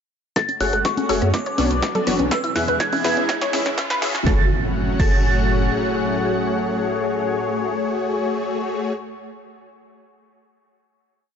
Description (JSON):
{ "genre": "progressive house", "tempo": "123 BPM", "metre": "4/4", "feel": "straight", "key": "F# minor", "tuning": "A4 = 443 Hz", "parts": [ { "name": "glassy synth bell", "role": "melody", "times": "0.4-9.5 s", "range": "C#6 to A6", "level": "-26 LUFS", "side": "right 2 dB", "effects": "chorus, phaser, sidechain pumping, low-pass filter, dub echo" }, { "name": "lush unison pad", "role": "sustained chords", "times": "0.4-8.7 s", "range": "A2 to F#5", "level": "-26 LUFS", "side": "equal", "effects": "chorus, sidechain pumping" }, { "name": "analog pluck", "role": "arpeggios", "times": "0.4-9.5 s", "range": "B3 to C#5", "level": "-27 LUFS", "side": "equal", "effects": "chorus, sidechain pumping, dub echo" }, { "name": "electronic kick drum", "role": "drums", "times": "0.4-5.1 s", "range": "none", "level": "-21 LUFS", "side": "equal", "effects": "high-pass filter on kick" }, { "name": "house drum kit", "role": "drums", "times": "0.4-5.1 s", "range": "crash cymbal, hi-hat, rim click, snare drum", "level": "-28 LUFS", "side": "equal", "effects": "high-pass filter on snare, high-pass filter on hats, high-pass filter on cymbals" }, { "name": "riser and impact", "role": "sound effects", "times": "1.9-8.8 s", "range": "none", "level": "-29 LUFS", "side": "right 1 dB", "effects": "none" }, { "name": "supersaw stab", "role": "stabs", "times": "0.6-8.9 s", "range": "B2 to E5", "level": "-24 LUFS", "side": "left 3 dB", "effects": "sidechain pumping, low-pass filter, dub echo" }, { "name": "saturated sub bass", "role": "bass", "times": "0.6-5.7 s", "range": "E1 to F#2", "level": "-24 LUFS", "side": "right 1 dB", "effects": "sidechain pumping" }, { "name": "woodblock and congas", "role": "percussion", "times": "0.6-4.2 s", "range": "none", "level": "-27 LUFS", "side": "left 3 dB", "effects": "sidechain pumping on perc" } ], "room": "light reverb", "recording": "high-pass filter, nothing above 7.6 kHz", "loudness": "-18 LUFS", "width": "side -7 dB against mid", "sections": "0.4-4.3 build; 4.3-8.2 final chord", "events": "build-up 0.4-4.3; drum fill 0.4-4.3; filter sweep on synth arpeggio sound 0.4-4.3; filter sweep on supersaw synth 0.4-4.3; filter sweep on synth bell 0.4-4.3; filter sweep 0.4-4.3; riser 1.9-4.3", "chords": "0.4 F#madd9; 1.3 Bmadd9; 2.3 E; 3.3 C#m; 4.3 F#madd9" }